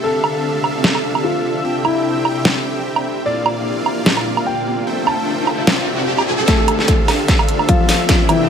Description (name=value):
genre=heavy wobble dubstep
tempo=149 BPM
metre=4/4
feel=swing 54% on 16ths, half-time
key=D minor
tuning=A4 = 440 Hz
part: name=warm concert grand piano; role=melody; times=0.0-8.5 s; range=E3 to A5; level=-21 LUFS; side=left 3 dB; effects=dub echo
part: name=supersaw chords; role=sustained chords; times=0.0-8.5 s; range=Bb2 to G5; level=-23 LUFS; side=right 1 dB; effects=sidechain pumping
part: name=granular cloud pad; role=texture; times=0.0-8.5 s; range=C4 to E6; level=-23 LUFS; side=equal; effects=built-in reverb, sidechain pumping
part: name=dubstep drum kit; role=drums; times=0.2-8.4 s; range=hi-hat, snare drum, woodblock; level=-17 LUFS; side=right 2 dB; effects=overdrive, high-pass filter on perc, low-pass filter on perc, high-pass filter on snare, low-pass filter on snare, high-pass filter on hats, low-pass filter on hats, high-pass filter on room, low-pass filter on room
part: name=riser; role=sound effects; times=4.5-8.5 s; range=none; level=-22 LUFS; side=left 1 dB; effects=none
part: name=electronic kick drum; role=drums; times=6.5-8.2 s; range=none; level=-16 LUFS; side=equal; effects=overdrive
room=moderate lush hall reverb, RT60 2.0 s, digital ambience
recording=none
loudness=-14 LUFS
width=side -7 dB against mid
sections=0.0-6.5 A section; 6.5-8.5 B section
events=riser 4.5-6.5, 6.5-8.5; build-up 6.5-8.5; drum fill 6.5-8.5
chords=0.0 Dmadd9; 1.6 C; 3.3 Bb; 4.9 Am7; 5.7 Cadd9; 6.5 Dmadd9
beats=| 0.04 0.44 0.84 1.24 | 1.65 2.05 2.45 2.85 | 3.26 3.66 4.06 4.46 | 4.87 5.27 5.67 6.08 | 6.48 6.88 7.28 7.69 | 8.09